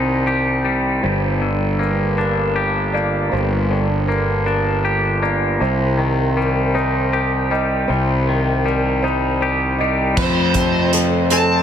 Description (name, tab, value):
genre	post-rock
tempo	52 BPM (dotted quarters)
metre	6/8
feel	straight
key	unclear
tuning	A4 = 441 Hz
part	twangy electric guitar	arpeggios	0.0-11.6 s	F2 to G4	-20 LUFS	left 3 dB	ping-pong delay
part	fuzz fingered electric bass	bass	0.0-11.6 s	G1 to F2	-19 LUFS	right 1 dB	overdrive
part	felt-muted upright piano	arpeggios	1.0-11.6 s	A4 to B5	-25 LUFS	right 3 dB	wide subtle chorus, ping-pong delay
part	bluesy overdriven lead guitar	melody	10.2-11.6 s	C5 to A5	-20 LUFS	left 3 dB	distortion, ping-pong delay
part	pedal steel guitar	sustained chords	10.2-11.6 s	F3 to A4	-26 LUFS	left 1 dB	ensemble chorus
part	loose indie drum kit	drums	10.2-11.5 s	crash cymbal, hi-hat, kick drum	-20 LUFS	right 2 dB	none
room	moderate plate reverb, RT60 3.5 s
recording	dreamy mix soaked in reverb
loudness	-16 LUFS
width	side -8 dB against mid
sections	0.0-10.2 A section; 10.2-11.6 B section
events	none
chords	0.0 Cm; 1.0 Gm; 5.6 Cm; 10.2 F